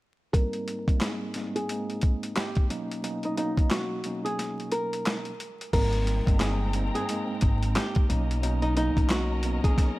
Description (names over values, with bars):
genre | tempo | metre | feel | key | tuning
hip hop, boom-bap hip-hop | 89 BPM | 4/4 | swing 60% on 16ths | Ab major | A4 = 440 Hz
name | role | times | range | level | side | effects
flamenco guitar | melody | 0.3-10.0 s | D#4 to Bb4 | -32 LUFS | equal | high-pass filter, low-pass filter
mellow tine electric piano | accompaniment | 0.3-10.0 s | Ab2 to Eb4 | -32 LUFS | right 1 dB | medium stereo tremolo, cassette tape, high-pass filter, low-pass filter
boom bap sampler-style drum kit | drums | 0.3-10.0 s | crash cymbal, handclaps, hi-hat, kick drum, snare drum | -26 LUFS | equal | none
warm studio string section | sustained chords | 5.7-10.0 s | C4 to Bb5 | -38 LUFS | left 2 dB | high-pass filter, low-pass filter
upright bass | bass | 5.7-9.6 s | G1 to B1 | -27 LUFS | equal | none
room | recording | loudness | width
studio reverb | vinyl crackle | -25 LUFS | side -18 dB against mid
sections
0.3-5.7 A section; 5.7-10.0 B section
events
filter sweep 0.3-5.7; break 4.4-5.7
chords
0.3 Abmaj9; 2.7 Bmaj9; 5.7 Abmaj9; 8.1 Bmaj9